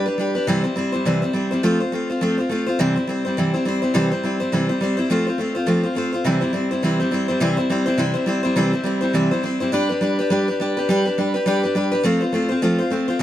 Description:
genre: rock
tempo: 207 BPM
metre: 4/4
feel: swing 58% on 8ths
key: C major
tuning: A4 = 439 Hz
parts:
  - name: picked steel-string acoustic guitar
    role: solo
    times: 0.0-13.2 s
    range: C3 to C5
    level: -18 LUFS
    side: equal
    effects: analog delay
room: light reverb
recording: none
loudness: -18 LUFS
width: side -12 dB against mid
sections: 0.5-13.2 A section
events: none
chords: 0.5 C; 1.6 F; 2.8 C; 5.1 F; 6.3 C; 9.7 G; 12.0 F

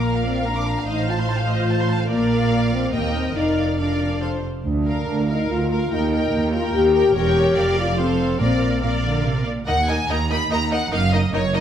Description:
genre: quick classical-period movement for symphony orchestra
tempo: 144 BPM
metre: 3/4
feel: rubato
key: Bb major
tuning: A4 = 440 Hz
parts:
  - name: clear symphonic violin section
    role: melody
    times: 0.0-11.6 s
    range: Db5 to Cb6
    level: -28 LUFS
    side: left 1 dB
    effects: none
  - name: rich symphonic violin section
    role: second line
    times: 0.0-11.6 s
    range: Bb4 to D6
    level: -28 LUFS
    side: left 1 dB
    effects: none
  - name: rich chamber viola section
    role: accompaniment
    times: 0.0-11.6 s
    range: Bb3 to C5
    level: -30 LUFS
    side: right 2 dB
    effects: none
  - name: warm French horn section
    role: sustained chords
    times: 0.0-9.2 s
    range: Bb3 to G4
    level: -22 LUFS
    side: left 3 dB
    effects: none
  - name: rich chamber double bass section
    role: bass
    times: 0.0-11.6 s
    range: E1 to Eb2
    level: -25 LUFS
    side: right 2 dB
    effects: none
  - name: rich studio cello section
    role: bass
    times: 0.0-11.6 s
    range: D2 to D3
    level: -25 LUFS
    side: right 3 dB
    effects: none
  - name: timpani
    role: percussion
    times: 8.4-9.0 s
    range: Bb2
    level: -28 LUFS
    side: equal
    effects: none
room: moderate scoring stage reverb, RT60 1.5 s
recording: none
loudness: -18 LUFS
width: side -9 dB against mid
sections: 0.0-9.7 A section; 9.7-11.6 B section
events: none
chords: 0.0 Bb; 0.9 F7/A; 2.1 Bb; 2.9 Eb; 3.4 Bb/F; 4.2 F5; 4.7 Bb/D; 5.9 Eb; 7.1 Edim7; 7.6 Bb/F; 8.0 F; 8.4 Bb; 9.7 Eb5; 10.9 Ebm/Gb

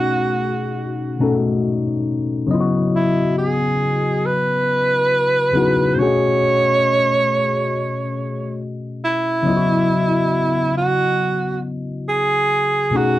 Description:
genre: R&B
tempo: 69 BPM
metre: 4/4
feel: swing 60% on 16ths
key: C# minor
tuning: A4 = 440 Hz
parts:
  - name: breathy tenor saxophone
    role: melody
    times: 0.0-13.2 s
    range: E4 to C#5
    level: -18 LUFS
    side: right 2 dB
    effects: slapback echo
  - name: tine electric piano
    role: accompaniment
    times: 0.0-13.2 s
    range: B2 to D#5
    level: -20 LUFS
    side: left 3 dB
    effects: phaser
room: light reverb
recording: dry, close 1970s-style studio recording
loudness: -16 LUFS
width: side -14 dB against mid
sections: 0.0-13.2 A section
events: none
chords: 0.0 B9; 2.5 C#m11; 6.0 B9; 9.5 C#m11

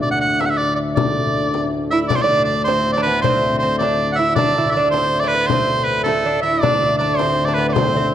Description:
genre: medieval dance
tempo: 106 BPM (dotted quarters)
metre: 6/8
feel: straight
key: unclear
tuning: A4 = 439 Hz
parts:
  - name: bright shawm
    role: melody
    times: 0.0-8.1 s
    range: A4 to F#5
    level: -19 LUFS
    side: right 2 dB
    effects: none
  - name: pedal harmonium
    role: drone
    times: 0.0-8.1 s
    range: D2 to A2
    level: -23 LUFS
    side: left 3 dB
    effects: none
  - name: frame drum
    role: percussion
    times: 0.0-8.0 s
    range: none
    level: -24 LUFS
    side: left 5 dB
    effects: none
  - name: lute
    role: second line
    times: 1.9-8.1 s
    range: A3 to E4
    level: -21 LUFS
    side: right 3 dB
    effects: none
room: wet recital hall reverb, RT60 1.5 s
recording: dark, warm production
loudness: -15 LUFS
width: side -10 dB against mid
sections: 0.0-2.1 A section; 2.1-8.1 B section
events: none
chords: none

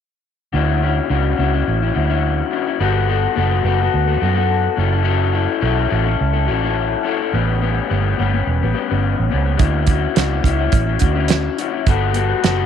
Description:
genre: indie pop, bedroom pop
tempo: 106 BPM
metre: 4/4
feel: swing 55% on 16ths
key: D major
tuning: A4 = 440 Hz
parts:
  - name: electric guitar through a small old amp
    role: accompaniment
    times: 0.5-12.7 s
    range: A2 to A4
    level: -19 LUFS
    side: left 9 dB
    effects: wide subtle chorus, vibrato effect
  - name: vintage muted fingered electric bass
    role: bass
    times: 0.5-12.7 s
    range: E1 to F#2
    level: -18 LUFS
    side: right 2 dB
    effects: none
  - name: damped 70s drum kit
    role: drums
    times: 9.6-12.6 s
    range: hi-hat, kick drum, snare drum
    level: -16 LUFS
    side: right 4 dB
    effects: none
room: light reverb, small room ambience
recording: 1960s-style stereo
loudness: -15 LUFS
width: side -8 dB against mid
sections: 0.5-12.7 A section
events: none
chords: 0.5 Dmaj9; 2.8 Gmaj9; 4.8 F#m7; 7.3 A9; 9.6 Dmaj9; 11.9 Gmaj9

